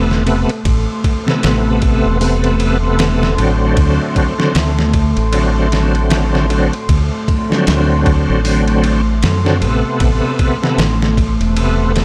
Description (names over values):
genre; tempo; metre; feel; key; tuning
trip hop; 77 BPM; 4/4; swing 59% on 16ths; A dorian; A4 = 438 Hz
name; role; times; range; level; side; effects
bright tonewheel organ; accompaniment; 0.0-12.0 s; C3 to C4; -20 LUFS; equal; chorus vibrato, slow rotary speaker, tremolo, tape echo
deep dark ambient pad; sustained chords; 0.0-12.0 s; A3 to C6; -23 LUFS; equal; chorus, built-in reverb, vintage 12-bit sampler grit
deep dub fingered electric bass; bass; 0.0-12.0 s; E1 to F#2; -18 LUFS; equal; none
dusty soul sampler-style drum kit; drums; 0.1-12.0 s; hi-hat, kick drum, ride cymbal, snare drum; -20 LUFS; equal; none
room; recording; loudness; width
digital ambience; dry, gritty hardware recording; -14 LUFS; mono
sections
0.0-12.0 A section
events
none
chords
0.0 Amadd9; 3.8 D7; 10.0 Amadd9